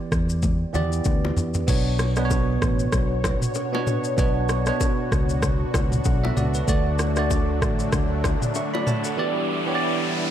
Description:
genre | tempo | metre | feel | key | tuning
afrobeats | 96 BPM | 4/4 | swing 58% on 16ths | unclear | A4 = 439 Hz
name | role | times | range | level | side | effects
barky tine electric piano | accompaniment | 0.0-10.3 s | B2 to C#6 | -26 LUFS | right 4 dB | phaser
fingered electric bass | bass | 0.1-8.3 s | A1 to E2 | -24 LUFS | equal | none
afro-pop drum kit | drums | 0.1-9.2 s | crash cymbal, kick drum, rim click, shaker, toms | -24 LUFS | equal | none
congas and bongos | percussion | 0.4-9.0 s | none | -34 LUFS | left 6 dB | none
lush unison pad | sustained chords | 1.7-10.3 s | F#3 to C#5 | -29 LUFS | left 2 dB | chorus
riser | sound effects | 8.1-10.3 s | none | -31 LUFS | left 1 dB | none
room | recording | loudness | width
light reverb | none | -20 LUFS | side -10 dB against mid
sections
0.0-1.7 A section; 1.7-10.3 B section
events
drum fill 0.4-1.7; riser 8.1-10.3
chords
0.0 Em7; 1.7 Bmadd9; 9.2 Em7

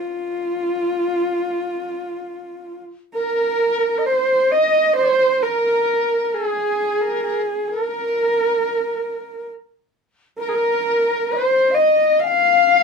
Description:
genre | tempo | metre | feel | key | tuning
mongolian traditional, Mongolian folk | 66 BPM | 4/4 | straight | unclear | A4 = 440 Hz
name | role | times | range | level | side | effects
dark horsehead fiddle | melody | 0.0-12.8 s | F4 to F5 | -18 LUFS | equal | none
reedy large dizi | second line | 3.1-12.8 s | Ab4 to Ab5 | -24 LUFS | left 3 dB | none
room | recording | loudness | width
moderate small room reverb, RT60 0.5 s | band playing live in one room | -17 LUFS | side -5 dB against mid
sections
0.0-3.1 A section; 3.1-12.8 B section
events
none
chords
none

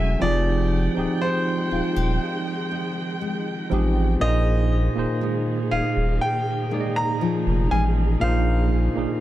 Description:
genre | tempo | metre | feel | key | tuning
R&B | 60 BPM | 4/4 | straight | unclear | A4 = 436 Hz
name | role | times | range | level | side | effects
bright grand piano | melody | 0.0-9.2 s | C5 to Bb5 | -28 LUFS | equal | dub echo
tine electric piano | accompaniment | 0.0-9.2 s | Bb2 to Eb5 | -25 LUFS | right 2 dB | medium stereo tremolo
warm symphonic string section | sustained chords | 0.0-9.2 s | Eb3 to Ab5 | -32 LUFS | right 2 dB | none
nylon-string guitar | arpeggios | 0.0-9.2 s | Bb2 to Ab4 | -30 LUFS | left 5 dB | dub echo
saturated sub bass | bass | 0.0-9.1 s | Eb1 to Bb1 | -22 LUFS | equal | none
glassy synth bell | texture | 4.2-9.2 s | F4 to Bb4 | -38 LUFS | left 1 dB | none
room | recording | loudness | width
studio reverb | echo-heavy mix | -20 LUFS | side -14 dB against mid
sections
0.0-9.2 A section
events
none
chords
0.2 Fm9; 4.2 Bb7sus4

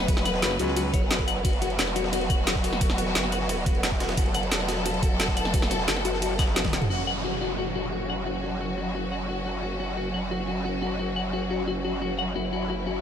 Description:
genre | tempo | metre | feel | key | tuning
dark technical drum and bass | 176 BPM | 4/4 | straight | F# minor | A4 = 440 Hz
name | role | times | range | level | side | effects
clear studio string section | sustained chords | 0.0-13.0 s | F#3 to B4 | -30 LUFS | equal | sidechain pumping
growl bass | bass | 0.0-13.0 s | E1 to F#1 | -31 LUFS | equal | chorus, overdrive
drum and bass drum kit | drums | 0.0-6.9 s | hi-hat, ride cymbal, snare drum, toms | -29 LUFS | equal | overdrive, studio reverb
clean electric guitar | arpeggios | 0.1-13.0 s | F#4 to F#5 | -31 LUFS | left 4 dB | phaser, sidechain pumping, ping-pong delay
breakbeat sampler-style drum kit | drums | 0.1-6.9 s | hi-hat, ride cymbal, snare drum | -35 LUFS | right 1 dB | high-pass filter on cymbals, studio reverb, high-pass filter on snare, high-pass filter on hats, high-pass filter on room
electronic kick drum | drums | 0.1-6.7 s | none | -26 LUFS | equal | overdrive, studio reverb
growling FM bass | bass | 0.4-0.9 s | F#1 to C#2 | -27 LUFS | equal | none
downlifter | sound effects | 6.9-9.6 s | none | -34 LUFS | right 1 dB | none
room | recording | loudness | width
light reverb | none | -24 LUFS | side -8 dB against mid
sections
0.0-6.9 A section; 6.9-13.0 B section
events
drop 0.0-6.9; drum fill 6.6; band accent 6.7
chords
0.0 F#5

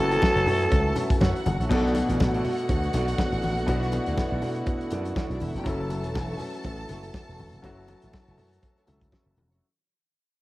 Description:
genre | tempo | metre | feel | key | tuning
disco | 121 BPM | 4/4 | swing 56% on 16ths | B minor | A4 = 440 Hz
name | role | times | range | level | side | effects
growling alto saxophone | melody | 0.0-1.2 s | A4 | -24 LUFS | equal | cassette tape
rich studio violin section | second line | 0.0-9.3 s | D4 to A5 | -35 LUFS | equal | none
clear grand piano | accompaniment | 0.0-9.6 s | B2 to A4 | -31 LUFS | left 2 dB | none
dark French horn section | sustained chords | 0.0-9.6 s | D3 to F#4 | -32 LUFS | right 1 dB | none
slap bass with an envelope filter | bass | 0.0-9.6 s | E1 to B2 | -29 LUFS | equal | none
mellow electric guitar | accompaniment | 0.1-9.7 s | E4 to D5 | -38 LUFS | right 2 dB | none
warm soul drum kit | drums | 0.1-9.6 s | crash cymbal, hi-hat, kick drum, snare drum | -27 LUFS | equal | cassette tape
congas | percussion | 0.2-9.5 s | none | -34 LUFS | left 2 dB | none
cowbell | percussion | 0.2-9.3 s | none | -42 LUFS | right 4 dB | none
room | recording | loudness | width
light reverb | home recording on cassette | -23 LUFS | side -18 dB against mid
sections
0.0-1.7 A section; 1.7-9.6 B section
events
fade-out 1.7-9.6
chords
0.0 F#m7; 1.7 Bm7; 5.7 F#m7

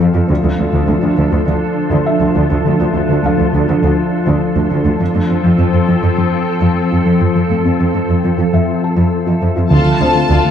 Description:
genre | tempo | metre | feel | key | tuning
cinematic, hybrid orchestral and electronic film score | 102 BPM | 4/4 | straight | D minor | A4 = 440 Hz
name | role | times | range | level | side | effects
glassy FM pad | sustained chords | 0.0-10.5 s | F3 to A4 | -16 LUFS | left 1 dB | ensemble chorus, built-in reverb
soft round pluck | arpeggios | 0.0-10.5 s | D3 to F4 | -20 LUFS | left 2 dB | chorus, tape echo
rich studio cello section | bass | 0.0-10.4 s | D2 to F2 | -16 LUFS | right 2 dB | none
felt-muted upright piano | texture | 0.0-10.5 s | C4 to A5 | -25 LUFS | left 2 dB | tape echo
warm symphonic violin section | melody | 9.7-10.5 s | A5 | -17 LUFS | left 3 dB | none
warm symphonic violin section | second line | 9.7-10.5 s | F4 to A4 | -18 LUFS | left 3 dB | none
dark French horn section | sustained chords | 9.7-10.5 s | A3 to F4 | -21 LUFS | left 2 dB | none
smooth synth bass | riff | 9.7-10.5 s | D2 to D3 | -14 LUFS | right 2 dB | none
room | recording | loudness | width
moderate scoring stage reverb, RT60 1.8 s | dark, warm production | -12 LUFS | side -9 dB against mid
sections
0.0-9.7 A section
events
build-up 0.0-9.7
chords
0.3 Dm; 5.0 F; 9.7 Dm

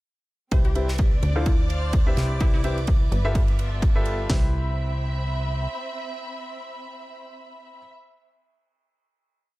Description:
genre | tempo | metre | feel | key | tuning
piano house | 127 BPM | 4/4 | swing 56% on 16ths | C major | A4 = 441 Hz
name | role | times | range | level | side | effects
glassy wavetable pluck | melody | 0.5-2.9 s | E4 to C5 | -35 LUFS | left 2 dB | chorus, digital delay
string machine, violins | sustained chords | 0.5-4.3 s | D5 to D6 | -38 LUFS | equal | ensemble chorus, sidechain pumping
clear upright piano | riff | 0.5-7.8 s | C3 to F5 | -31 LUFS | left 1 dB | sidechain pumping, low-pass filter, digital delay
plucky analog bass | bass | 0.5-5.7 s | G1 to D2 | -25 LUFS | equal | sidechain pumping
modern studio drum kit | drums | 0.5-4.2 s | ride cymbal, snare drum | -40 LUFS | right 3 dB | high-pass filter on cymbals, high-pass filter on snare, high-pass filter on room
punchy analog drum machine | drums | 0.5-4.4 s | hi-hat, kick drum, snare drum | -21 LUFS | equal | none
dark symphonic string section | texture | 0.5-7.9 s | B3 to B5 | -35 LUFS | right 1 dB | sidechain pumping
room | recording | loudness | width
small room ambience | none | -21 LUFS | side -19 dB against mid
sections
0.5-4.3 breakdown; 4.3-8.1 final chord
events
filter sweep on upright piano 0.5-4.3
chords
0.5 Cmaj7; 1.2 Dm7; 2.2 Cmaj7; 3.1 G13; 4.3 Cmaj7

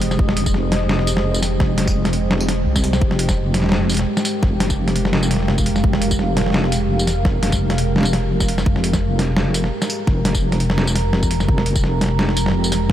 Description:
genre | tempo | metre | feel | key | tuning
half-time drum and bass | 170 BPM | 4/4 | swing 54% on 16ths, half-time | F minor | A4 = 439 Hz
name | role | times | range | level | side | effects
deep dark ambient pad | sustained chords | 0.0-12.9 s | Ab3 to Bb5 | -23 LUFS | right 1 dB | chorus, built-in reverb, sidechain pumping
deep soft wobble bass | bass | 0.0-12.9 s | F1 to C2 | -20 LUFS | equal | chorus
boom bap sampler-style drum kit | drums | 0.0-12.9 s | hi-hat, snare drum, tambourine | -21 LUFS | equal | none
electronic kick drum | drums | 0.2-12.9 s | none | -19 LUFS | equal | none
room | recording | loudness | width
light reverb, digital ambience | none | -16 LUFS | side -11 dB against mid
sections
0.0-12.9 A section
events
none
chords
0.0 Fmadd9

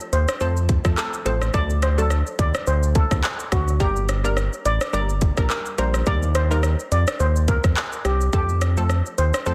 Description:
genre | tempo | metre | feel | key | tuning
dancehall | 106 BPM | 4/4 | swing 56% on 16ths | G minor | A4 = 440 Hz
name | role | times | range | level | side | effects
organic electronic drum kit | drums | 0.0-9.5 s | handclaps, hi-hat, kick drum, rim click, shaker | -26 LUFS | equal | none
steel pan | melody | 0.1-9.5 s | F#4 to D5 | -28 LUFS | equal | digital delay
round analog bass | bass | 0.1-9.5 s | G1 to F2 | -23 LUFS | equal | none
punchy chord stab | accompaniment | 0.4-9.5 s | F3 to Bb4 | -32 LUFS | equal | chorus, sidechain pumping
room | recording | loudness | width
little or no reverb | dense, heavily limited modern master | -21 LUFS | mono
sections
0.0-9.5 A section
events
none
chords
0.0 F; 1.5 D; 3.8 Gm; 6.1 Eb; 8.3 F

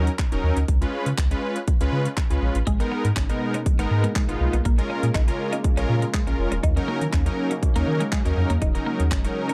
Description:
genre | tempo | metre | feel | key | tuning
dance-pop | 121 BPM | 4/4 | straight | unclear | A4 = 439 Hz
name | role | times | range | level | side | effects
big bright polysynth | accompaniment | 0.0-9.5 s | F#3 to B4 | -29 LUFS | equal | chorus, sidechain pumping
warm sub bass | bass | 0.0-9.3 s | D#1 to D#3 | -25 LUFS | equal | sidechain pumping
pop drum kit | drums | 0.1-9.5 s | handclaps, hi-hat, kick drum | -26 LUFS | equal | none
sweeping resonant pad | sustained chords | 2.7-9.5 s | B2 to E#4 | -35 LUFS | equal | chorus, sidechain pumping
twelve-string electric guitar | riff | 2.7-9.5 s | G#3 to D#4 | -34 LUFS | equal | analog chorus
room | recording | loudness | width
little or no reverb | dark, warm production | -23 LUFS | mono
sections
0.0-9.5 A section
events
none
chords
0.0 D#m7; 0.7 C#7; 2.7 G#madd9; 4.7 A#m7; 6.6 D#m7

